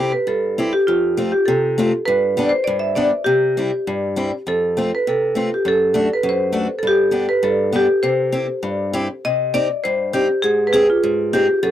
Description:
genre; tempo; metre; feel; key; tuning
alpine folk; 101 BPM; 2/4; straight; C major; A4 = 440 Hz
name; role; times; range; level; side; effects
marimba with hard mallets; melody; 0.0-11.7 s; F4 to E5; -17 LUFS; equal; none
picked steel-string acoustic guitar; accompaniment; 0.0-11.7 s; F2 to Ab4; -22 LUFS; left 2 dB; none
room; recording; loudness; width
light reverb; dry, close 1970s-style studio recording; -16 LUFS; side -11 dB against mid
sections
0.0-9.2 A section; 9.2-11.7 B section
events
none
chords
0.0 C; 0.9 F; 2.1 G; 3.3 C; 4.5 F; 5.6 D/F#; 6.8 G; 8.0 C; 9.2 Cm; 10.4 Ab

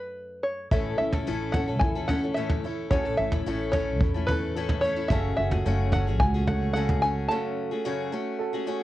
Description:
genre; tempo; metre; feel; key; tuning
indie folk with a building arrangement; 109 BPM; 4/4; straight; A major; A4 = 441 Hz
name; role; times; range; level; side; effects
open-back banjo; melody; 0.0-8.8 s; B4 to A5; -29 LUFS; equal; cassette tape
fingerpicked old ladder-braced acoustic guitar; accompaniment; 0.0-5.1 s; F#2 to A4; -35 LUFS; left 4 dB; cassette tape
picked steel-string acoustic guitar; accompaniment; 0.7-8.8 s; F#2 to A4; -32 LUFS; left 5 dB; cassette tape
dark upright piano; arpeggios; 0.7-8.8 s; A3 to C#5; -33 LUFS; right 7 dB; cassette tape, tape echo
upright bass; bass; 0.7-7.3 s; F#1 to E2; -29 LUFS; equal; none
soft brush drum kit; drums; 0.7-7.0 s; kick drum, toms; -28 LUFS; equal; none
room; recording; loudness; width
moderate studio reverb, RT60 0.6 s; home recording on cassette; -24 LUFS; side -15 dB against mid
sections
0.7-8.8 A section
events
stop 0.0-0.7; break 7.3-8.8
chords
0.0 F#m; 0.7 A; 5.1 F#madd9

